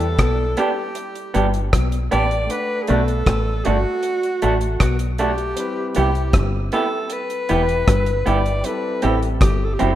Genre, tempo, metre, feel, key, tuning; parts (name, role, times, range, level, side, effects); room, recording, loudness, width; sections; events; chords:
lovers rock reggae; 78 BPM; 4/4; straight; E minor; A4 = 439 Hz
clear alto saxophone; melody; 0.0-10.0 s; F#4 to D5; -24 LUFS; equal; tape echo
clear grand piano; accompaniment; 0.0-10.0 s; G3 to F#5; -33 LUFS; left 3 dB
mellow electric guitar; riff; 0.0-9.9 s; E3 to C4; -31 LUFS; left 9 dB
deep dub fingered electric bass; bass; 0.0-10.0 s; E1 to E2; -20 LUFS; equal
deep reggae drum kit; drums; 0.0-10.0 s; hi-hat, kick drum, rim click; -20 LUFS; equal
electric guitar through a small old amp; stabs; 0.6-9.9 s; A3 to G4; -23 LUFS; right 3 dB
moderate plate reverb, RT60 1.8 s, small room ambience; rough home demo mix; -17 LUFS; side -12 dB against mid
0.0-10.0 A section
0.0 Em7; 2.5 Bm7; 5.6 Cmaj7; 8.6 Am7